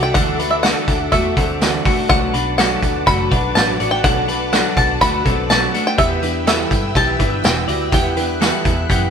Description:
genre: jangly indie pop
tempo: 124 BPM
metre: 4/4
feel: straight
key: unclear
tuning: A4 = 440 Hz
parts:
  - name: bluegrass banjo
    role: melody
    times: 0.0-9.1 s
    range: E5 to B5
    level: -20 LUFS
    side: left 1 dB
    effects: none
  - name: fingerpicked plugged-in steel-string acoustic guitar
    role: accompaniment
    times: 0.0-9.1 s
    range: B2 to F#4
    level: -23 LUFS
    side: right 7 dB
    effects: none
  - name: string machine, violas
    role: sustained chords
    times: 0.0-9.1 s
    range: A4 to F#6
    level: -26 LUFS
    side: equal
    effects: ensemble chorus
  - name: twelve-string electric guitar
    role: arpeggios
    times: 0.0-9.1 s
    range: A3 to D5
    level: -22 LUFS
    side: left 7 dB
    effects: none
  - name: vintage muted picked electric bass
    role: bass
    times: 0.0-9.1 s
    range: E1 to G2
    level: -24 LUFS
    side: equal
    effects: none
  - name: vintage drum kit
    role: drums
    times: 0.1-9.0 s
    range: hi-hat, kick drum, snare drum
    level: -19 LUFS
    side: equal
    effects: none
  - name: tambourine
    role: percussion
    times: 0.1-9.0 s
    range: none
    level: -34 LUFS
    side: right 7 dB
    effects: none
room: moderate stone room reverb, RT60 1.2 s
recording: band playing live in one room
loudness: -14 LUFS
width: side -7 dB against mid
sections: 0.0-9.1 A section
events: none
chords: 0.0 Dadd9; 2.1 Bm7; 6.0 Em

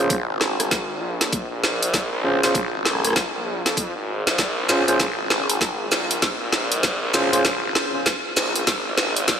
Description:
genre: glitch hop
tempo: 98 BPM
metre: 4/4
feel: swing 62% on 16ths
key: Bb minor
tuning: A4 = 440 Hz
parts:
  - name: overdriven tine electric piano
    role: stabs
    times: 0.0-7.5 s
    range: Db4 to C5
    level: -25 LUFS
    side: equal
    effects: sidechain pumping, low-pass filter, tape echo
  - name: phased detuned saw bass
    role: bass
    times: 0.0-9.4 s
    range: Ab1 to F2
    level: -25 LUFS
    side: equal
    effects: phaser, tube saturation, high-pass filter
  - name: drum and bass drum kit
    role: drums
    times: 0.1-9.4 s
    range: hi-hat, rim click, shaker, snare drum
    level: -21 LUFS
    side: equal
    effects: overdrive
  - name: electronic kick drum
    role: drums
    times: 0.1-9.4 s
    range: none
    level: -28 LUFS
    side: equal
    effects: overdrive, high-pass filter on kick
room: wet church reverb, RT60 3.3 s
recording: dreamy mix soaked in reverb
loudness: -19 LUFS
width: side -8 dB against mid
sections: 0.0-9.4 A section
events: build-up 0.0-9.4; drum fill 0.0-9.4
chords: 0.0 Bb7(no3)

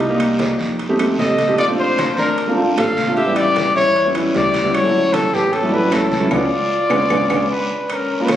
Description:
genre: Afro-Cuban jazz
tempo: 152 BPM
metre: 4/4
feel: straight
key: unclear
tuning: A4 = 440 Hz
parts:
  - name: warm trumpet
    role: melody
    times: 0.0-8.4 s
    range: Eb4 to F5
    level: -18 LUFS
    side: left 2 dB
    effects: none
  - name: growling tenor saxophone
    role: second line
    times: 0.0-8.4 s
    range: G3 to A4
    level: -25 LUFS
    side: left 1 dB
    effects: none
  - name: upright bass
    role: bass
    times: 0.0-7.5 s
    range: A1 to F2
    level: -31 LUFS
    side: left 1 dB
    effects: none
  - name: congas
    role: percussion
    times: 0.0-8.4 s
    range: none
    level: -28 LUFS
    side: left 2 dB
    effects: none
  - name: guiro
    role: percussion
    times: 0.0-8.4 s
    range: none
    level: -30 LUFS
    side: right 1 dB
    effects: none
  - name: timbales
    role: percussion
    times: 0.0-8.4 s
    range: none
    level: -28 LUFS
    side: right 4 dB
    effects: none
  - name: warm concert grand piano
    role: accompaniment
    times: 0.1-8.4 s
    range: C#3 to D5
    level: -19 LUFS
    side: right 1 dB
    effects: none
  - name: claves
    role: percussion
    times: 0.2-8.4 s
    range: none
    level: -32 LUFS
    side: left 2 dB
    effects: none
room: wet scoring stage reverb, RT60 2.0 s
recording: recorded on a phone in the room, club reverb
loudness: -14 LUFS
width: side -11 dB against mid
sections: 0.0-7.9 A section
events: band accent 6.3-7.9; drum fill 7.1-7.9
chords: 0.0 Cm7; 0.8 F7; 1.6 Bbmaj9; 3.2 A7; 4.7 Dmaj7; 6.3 C#7b9

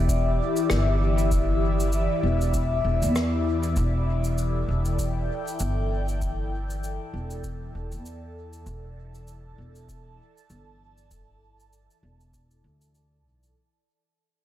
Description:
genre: ambient dub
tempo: 98 BPM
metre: 4/4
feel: swing 57% on 16ths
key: unclear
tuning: A4 = 439 Hz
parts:
  - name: airy breathy pad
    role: sustained chords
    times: 0.0-13.6 s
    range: E3 to A5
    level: -28 LUFS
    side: left 2 dB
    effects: chorus, phaser
  - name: upright bass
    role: bass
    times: 0.0-13.5 s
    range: E1 to E2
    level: -26 LUFS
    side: equal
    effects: tube saturation
  - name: cabasa and rim click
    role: drums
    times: 0.1-13.5 s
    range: none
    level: -34 LUFS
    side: left 1 dB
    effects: dub echo
  - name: electronic kick drum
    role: drums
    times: 0.1-12.5 s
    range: none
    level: -30 LUFS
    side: equal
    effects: none
room: light reverb, small room ambience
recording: none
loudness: -23 LUFS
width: side -12 dB against mid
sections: 0.0-13.6 A section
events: fade-out 0.0-13.6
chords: 0.0 Em7; 3.8 Gsus2/E

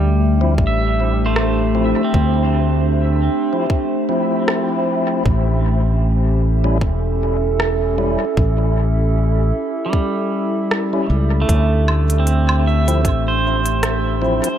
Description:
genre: ambient dub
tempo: 77 BPM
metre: 4/4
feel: swing 56% on 16ths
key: unclear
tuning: A4 = 442 Hz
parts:
  - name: warbly tape-like pad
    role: sustained chords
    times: 0.0-14.6 s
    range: A3 to E5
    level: -21 LUFS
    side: right 1 dB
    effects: chorus, built-in reverb
  - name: pedal steel guitar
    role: arpeggios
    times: 0.0-4.0, 9.9-14.6 s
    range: G3 to E5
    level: -23 LUFS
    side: right 3 dB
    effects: dub echo
  - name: modern bright fingered electric bass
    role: bass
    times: 0.0-14.4 s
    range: E1 to D2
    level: -17 LUFS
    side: equal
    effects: tube saturation
  - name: tonewheel organ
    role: stabs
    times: 0.4-14.5 s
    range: F3 to E4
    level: -25 LUFS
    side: left 2 dB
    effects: overdrive, fast rotary speaker, dub echo
  - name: electronic kick drum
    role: drums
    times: 0.6-13.2 s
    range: none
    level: -18 LUFS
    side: equal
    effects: none
  - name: organic electronic drum kit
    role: drums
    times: 1.4-14.6 s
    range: hi-hat, rim click, woodblock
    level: -25 LUFS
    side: equal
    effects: dub echo
room: light reverb, digital ambience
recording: none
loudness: -15 LUFS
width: side -10 dB against mid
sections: 0.0-14.6 A section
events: none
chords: 0.0 Dm7; 5.3 A7; 11.5 Dm7

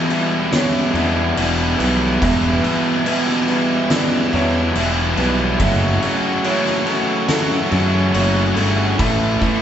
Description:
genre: post-rock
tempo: 71 BPM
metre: 4/4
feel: straight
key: E dorian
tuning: A4 = 443 Hz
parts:
  - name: chorused pulse-width pad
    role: sustained chords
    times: 0.0-9.6 s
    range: E4 to E6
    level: -29 LUFS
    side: left 1 dB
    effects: none
  - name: electric guitar at the edge of break-up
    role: arpeggios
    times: 0.0-9.6 s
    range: E2 to F#4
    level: -27 LUFS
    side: left 1 dB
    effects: none
  - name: felt-muted upright piano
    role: arpeggios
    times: 0.0-9.6 s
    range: A4 to E5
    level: -29 LUFS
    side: right 2 dB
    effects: none
  - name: distorted electric guitar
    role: riff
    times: 0.0-9.6 s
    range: E2 to A3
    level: -24 LUFS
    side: left 4 dB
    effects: overdrive
  - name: thick fuzz guitar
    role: riff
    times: 0.0-9.6 s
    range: A2 to G4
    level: -20 LUFS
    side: right 3 dB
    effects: distortion
  - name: oversized low-tuned drum kit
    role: drums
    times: 0.1-9.6 s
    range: crash cymbal, kick drum, snare drum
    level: -22 LUFS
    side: left 1 dB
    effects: none
  - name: fuzz picked electric bass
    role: bass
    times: 0.9-9.4 s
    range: E1 to F#2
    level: -20 LUFS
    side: equal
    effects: overdrive
room: wet studio reverb, RT60 0.9 s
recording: band playing live in one room, nothing above 7.9 kHz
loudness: -15 LUFS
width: side -9 dB against mid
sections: 0.0-9.6 A section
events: none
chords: 0.0 Em7; 5.6 F#m7; 9.0 A7(no3)

